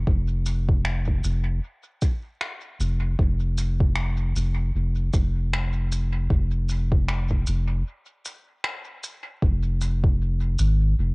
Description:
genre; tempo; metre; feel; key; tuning
ambient dub; 77 BPM; 4/4; swing 57% on 16ths; F minor; A4 = 440 Hz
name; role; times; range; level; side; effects
soft dub sub bass; bass; 0.0-11.1 s; F1 to Ab1; -22 LUFS; equal; tube saturation
electronic kick drum; drums; 0.1-10.2 s; none; -22 LUFS; equal; cassette tape
shaker and finger snaps; drums; 0.5-10.8 s; none; -32 LUFS; equal; cassette tape, dub echo
room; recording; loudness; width
little or no reverb; home recording on cassette, nothing above 10.9 kHz; -22 LUFS; side -31 dB against mid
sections
0.0-9.4 A section; 9.4-11.1 B section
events
break 7.9-9.4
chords
none

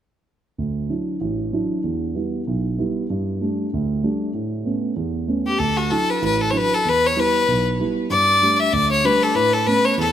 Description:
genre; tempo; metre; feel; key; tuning
celtic folk; 192 BPM; 4/4; swing 57% on 8ths; D major; A4 = 435 Hz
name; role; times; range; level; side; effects
dark concert grand piano; accompaniment; 0.6-10.1 s; A1 to E4; -22 LUFS; right 2 dB; none
bright fiddle; melody; 5.5-10.1 s; F#4 to E5; -17 LUFS; left 3 dB; none
room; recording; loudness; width
moderate lush hall reverb, RT60 3.0 s; rough home demo mix; -18 LUFS; side -10 dB against mid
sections
0.6-5.6 A section; 5.6-10.1 B section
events
none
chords
0.6 Dadd9; 1.8 Em; 3.1 Gsus2; 4.3 Aadd9; 5.6 Dadd9; 6.8 Em; 8.1 Gsus2; 9.3 Aadd9

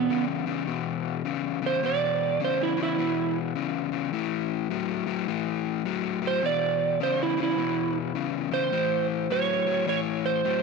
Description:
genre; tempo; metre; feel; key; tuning
blues; 104 BPM; 4/4; swing 63% on 8ths; A major; A4 = 439 Hz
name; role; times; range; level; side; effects
electric slide guitar; melody; 0.0-10.6 s; B3 to D5; -26 LUFS; right 8 dB; none
overdriven semi-hollow guitar; riff; 0.0-10.6 s; E2 to F#3; -28 LUFS; left 12 dB; none
room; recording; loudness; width
wet echo chamber reverb, RT60 2.7 s; 1960s-style stereo with parts hard left and right; -24 LUFS; side -4 dB against mid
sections
0.0-8.7 A section; 8.7-10.6 B section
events
electric slide guitar solo 0.0-8.7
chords
0.0 E5; 4.1 A5; 6.4 E5; 8.7 A

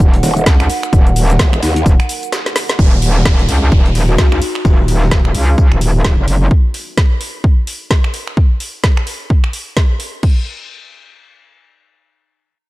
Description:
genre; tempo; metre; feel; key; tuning
bass house; 129 BPM; 4/4; swing 59% on 16ths; Eb minor; A4 = 436 Hz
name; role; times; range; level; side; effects
dark analog pad; sustained chords; 0.0-4.6 s; Eb4 to Gb5; -24 LUFS; right 4 dB; lush chorus, sidechain pumping
metallic wobble bass; bass; 0.0-6.5 s; Eb1 to Db2; -13 LUFS; equal; distortion, chorus, overdrive, sidechain pumping
breakbeat sampler-style drum kit; drums; 0.0-6.4 s; hi-hat, snare drum, tambourine; -29 LUFS; equal; none
electronic kick drum; drums; 0.0-10.3 s; none; -11 LUFS; equal; overdrive
garage drum kit; drums; 0.0-10.3 s; cabasa, crash cymbal, finger snaps, hi-hat, snare drum; -21 LUFS; equal; none
growl bass; bass; 0.2-1.8 s; Eb1 to Eb2; -14 LUFS; equal; chorus, overdrive, sidechain pumping
downlifter; sound effects; 2.8-6.5 s; none; -27 LUFS; right 1 dB; none
buzzing kalimba; melody; 4.1-4.5 s; Eb4 to Gb4; -25 LUFS; left 4 dB; dub echo
room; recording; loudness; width
little or no reverb; dark, warm production; -11 LUFS; side -19 dB against mid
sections
0.0-2.8 A section; 2.8-10.2 B section; 10.2-12.7 C section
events
drop 0.0-2.8; break 2.3-2.8; drum fill 2.3-2.8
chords
0.0 Ebm; 10.2 N.C.

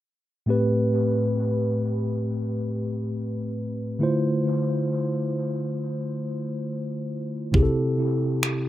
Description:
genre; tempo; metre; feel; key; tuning
contemporary R&B; 68 BPM; 4/4; swing 54% on 16ths; A minor; A4 = 440 Hz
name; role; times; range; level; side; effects
mellow tine electric piano; accompaniment; 0.5-8.7 s; A2 to C5; -23 LUFS; equal; medium stereo tremolo, dub echo
crisp 8-bit digital drum machine; drums; 7.5-8.6 s; finger snaps, kick drum; -22 LUFS; equal; none
room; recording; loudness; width
moderate spring reverb, RT60 2.8 s; echo-heavy mix; -23 LUFS; side -14 dB against mid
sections
0.5-8.7 A section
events
none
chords
0.5 Am9; 4.0 Dm9; 7.5 C6

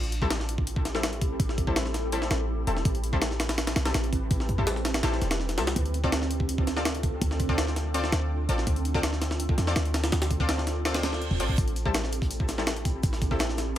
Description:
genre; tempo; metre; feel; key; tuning
drum and bass, jungle; 165 BPM; 4/4; straight; A minor; A4 = 444 Hz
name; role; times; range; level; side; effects
granular cloud pad; sustained chords; 0.0-13.8 s; C4 to B4; -35 LUFS; right 2 dB; built-in reverb
warm 808-style bass; bass; 0.0-13.8 s; D1 to E2; -29 LUFS; equal; none
breakbeat sampler-style drum kit; drums; 0.0-13.7 s; hi-hat, kick drum, snare drum; -28 LUFS; equal; studio reverb
orchestra-hit-like synth stab; stabs; 0.2-13.7 s; G3 to D5; -33 LUFS; left 2 dB; built-in reverb, dub echo
reverse cymbal; sound effects; 11.0-11.6 s; none; -38 LUFS; right 5 dB; none
crunchy breakbeat drum kit; drums; 11.6-13.7 s; hi-hat, shaker, snare drum; -42 LUFS; right 3 dB; none
room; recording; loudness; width
small room ambience; none; -24 LUFS; side -12 dB against mid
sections
0.0-13.8 A section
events
reverse cymbal 11.0-11.6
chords
0.0 Am7; 5.8 Dm7; 11.6 Am7

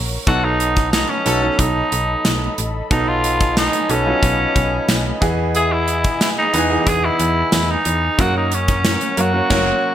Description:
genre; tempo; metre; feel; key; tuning
1980s-style pop; 91 BPM; 4/4; straight; unclear; A4 = 440 Hz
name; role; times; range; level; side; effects
clear baby grand piano; accompaniment; 0.0-9.9 s; E3 to D#5; -23 LUFS; right 2 dB; none
warm analog pad; sustained chords; 0.0-9.9 s; G#4 to C#6; -28 LUFS; left 1 dB; chorus
slap-like FM bass; bass; 0.0-9.7 s; F#1 to F#2; -22 LUFS; equal; none
breathy tenor saxophone; melody; 0.3-9.9 s; C#4 to G#4; -19 LUFS; equal; digital delay
clear horn section; stabs; 0.3-1.5, 5.5-9.7 s; E3 to A#4; -28 LUFS; left 2 dB; digital delay
modern studio drum kit; drums; 0.3-9.7 s; crash cymbal, hi-hat, kick drum, snare drum, tambourine; -20 LUFS; equal; gated reverb
room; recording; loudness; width
moderate plate reverb, RT60 1.4 s; bright 1980s-style digital production; -15 LUFS; side -11 dB against mid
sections
0.0-9.9 A section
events
band accent 9.5-9.9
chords
0.3 B7; 5.2 Emaj7; 8.2 F#

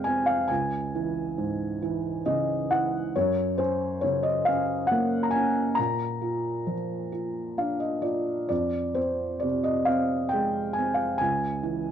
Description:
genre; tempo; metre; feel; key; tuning
classical, lyrical solo piano; 45 BPM (dotted quarters); 6/8; rubato; unclear; A4 = 439 Hz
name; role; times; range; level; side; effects
felt-muted upright piano; solo; 0.0-11.9 s; Db2 to Bb5; -24 LUFS; equal; none
room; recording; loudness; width
light reverb; worn, warbling old tape, cassette tape, warbly pitch drift; -24 LUFS; side -9 dB against mid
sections
0.0-11.9 A section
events
felt piano fill 1.8-3.1, 7.1-8.5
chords
0.5 Dbm; 3.1 Gb; 5.8 Bb; 8.5 Fm; 11.2 Dbm

